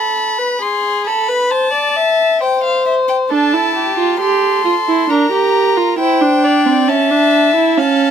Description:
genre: classical, baroque-style fugue for string quartet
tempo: 67 BPM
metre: 4/4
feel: straight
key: unclear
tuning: A4 = 438 Hz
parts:
  - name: rich violin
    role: melody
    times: 0.0-8.1 s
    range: E5 to C6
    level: -17 LUFS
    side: left 5 dB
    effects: none
  - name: dark violin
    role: second line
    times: 0.0-8.1 s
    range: G4 to F5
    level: -16 LUFS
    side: left 1 dB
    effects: none
  - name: warm viola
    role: accompaniment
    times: 3.3-8.1 s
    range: C4 to G4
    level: -14 LUFS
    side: right 5 dB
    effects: none
room: light reverb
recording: close, detailed microphones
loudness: -12 LUFS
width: side -8 dB against mid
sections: 0.0-8.1 A section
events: none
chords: 0.0 G#m; 1.5 Am/C; 3.3 Dm; 5.1 Em7b5/D; 6.9 A/C#

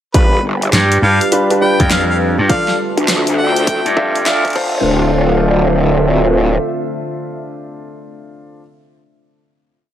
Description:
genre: glitch hop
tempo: 102 BPM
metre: 4/4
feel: swing 63% on 16ths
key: D dorian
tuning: A4 = 440 Hz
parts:
  - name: bright harmonica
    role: melody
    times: 0.1-3.9 s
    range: B4 to G5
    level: -20 LUFS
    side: equal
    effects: vintage 12-bit sampler grit, analog delay
  - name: warbly tape-like pad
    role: sustained chords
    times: 0.8-8.0 s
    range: D3 to B4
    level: -21 LUFS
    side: equal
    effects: chorus, built-in reverb, vintage 12-bit sampler grit, sidechain pumping
  - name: warm grand piano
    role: stabs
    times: 0.1-8.6 s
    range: D4 to E5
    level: -20 LUFS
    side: equal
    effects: sidechain pumping, low-pass filter, analog delay
  - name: growl bass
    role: bass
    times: 0.1-6.6 s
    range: D1 to D2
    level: -15 LUFS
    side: equal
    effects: chorus, tube saturation, high-pass filter
  - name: electronic kick drum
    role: drums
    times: 0.1-4.7 s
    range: none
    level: -15 LUFS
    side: equal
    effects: none
  - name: pop drum kit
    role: drums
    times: 0.1-4.7 s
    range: crash cymbal, hi-hat, snare drum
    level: -20 LUFS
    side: equal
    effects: none
  - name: warbly tape-like pad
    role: texture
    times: 0.7-8.0 s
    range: D4 to A5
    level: -23 LUFS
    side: right 1 dB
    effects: chorus, built-in reverb, sidechain pumping
  - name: gritty slap bass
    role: bass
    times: 0.7-4.6 s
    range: D2 to G2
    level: -14 LUFS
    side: equal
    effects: overdrive
room: light reverb, digital ambience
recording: dry, gritty hardware recording, high-pass filter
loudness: -11 LUFS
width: side -11 dB against mid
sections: 0.1-4.8 build; 4.8-7.2 final note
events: build-up 0.1-4.8; filter sweep on grand piano 0.1-4.8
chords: 0.1 G7; 2.5 Dm7

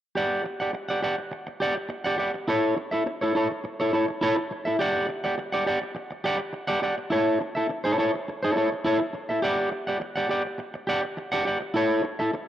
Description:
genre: disco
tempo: 104 BPM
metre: 4/4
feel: straight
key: unclear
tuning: A4 = 440 Hz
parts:
  - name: electric guitar at the edge of break-up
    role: accompaniment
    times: 0.2-12.4 s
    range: E4 to F#5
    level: -24 LUFS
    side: equal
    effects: spring reverb
room: little or no reverb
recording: dry, close 1970s-style studio recording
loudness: -24 LUFS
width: side -12 dB against mid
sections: 0.2-12.5 A section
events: none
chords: 0.2 Dadd11/G; 2.5 A/E; 4.8 Dadd11/G; 7.1 A/E; 9.4 Dadd11/G; 11.8 A/E

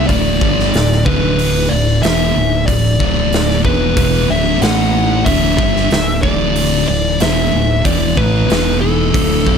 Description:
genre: stoner and doom metal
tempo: 93 BPM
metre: 4/4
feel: straight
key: unclear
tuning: A4 = 438 Hz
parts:
  - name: fuzz lead guitar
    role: melody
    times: 0.0-9.6 s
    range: A4 to F#5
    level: -18 LUFS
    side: left 1 dB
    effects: distortion
  - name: thick fuzz guitar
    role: riff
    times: 0.0-9.6 s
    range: B1 to A3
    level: -18 LUFS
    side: left 10 dB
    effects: distortion
  - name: thick fuzz guitar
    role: riff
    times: 0.0-9.6 s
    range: B1 to A3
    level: -18 LUFS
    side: right 11 dB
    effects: distortion
  - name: growling picked electric bass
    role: bass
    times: 0.0-9.6 s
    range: B0 to A1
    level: -19 LUFS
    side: equal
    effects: overdrive
  - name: raw garage drum kit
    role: drums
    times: 0.1-9.6 s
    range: hi-hat, kick drum, snare drum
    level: -18 LUFS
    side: right 1 dB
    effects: none
room: small room reverb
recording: none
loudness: -12 LUFS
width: side -7 dB against mid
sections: 0.0-9.6 A section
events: none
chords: 0.1 D5; 4.6 A5; 5.3 D5; 8.5 E5

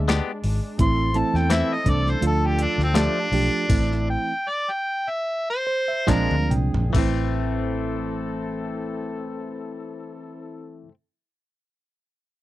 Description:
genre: straight-eighth soul blues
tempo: 68-85 BPM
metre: 4/4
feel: swing 54% on 16ths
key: A minor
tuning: A4 = 440 Hz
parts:
  - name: mellow harmonica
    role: melody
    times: 0.0-6.5 s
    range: C4 to C6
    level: -24 LUFS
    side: equal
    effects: overdrive
  - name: reed electric piano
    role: accompaniment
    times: 0.0-10.9 s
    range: E3 to G5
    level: -27 LUFS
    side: right 5 dB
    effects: none
  - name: mellow horn section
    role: sustained chords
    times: 0.0-10.9 s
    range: G#3 to A4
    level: -33 LUFS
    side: left 2 dB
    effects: none
  - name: vintage muted fingered electric bass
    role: bass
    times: 0.0-10.9 s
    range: G#1 to E2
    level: -24 LUFS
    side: equal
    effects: none
  - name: direct-recorded clean electric guitar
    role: stabs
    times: 0.1-10.9 s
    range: E3 to G4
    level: -30 LUFS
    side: left 7 dB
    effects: none
  - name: breakbeat sampler-style drum kit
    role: drums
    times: 0.1-7.2 s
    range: crash cymbal, hi-hat, kick drum, snare drum, toms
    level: -24 LUFS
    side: equal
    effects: none
room: little or no reverb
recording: dry, close 1970s-style studio recording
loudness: -20 LUFS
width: side -15 dB against mid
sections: 0.0-6.9 A section; 6.9-10.5 B section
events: harmonica solo 0.0-6.9; slowing down 0.8-6.9; stop 3.7-6.1; reed electric piano fill 5.3-6.9; drum fill 6.1-6.9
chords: 0.0 E7#9 (rootless); 0.8 Am; 2.2 Dm; 3.7 Am; 6.1 Bb7; 6.9 Am

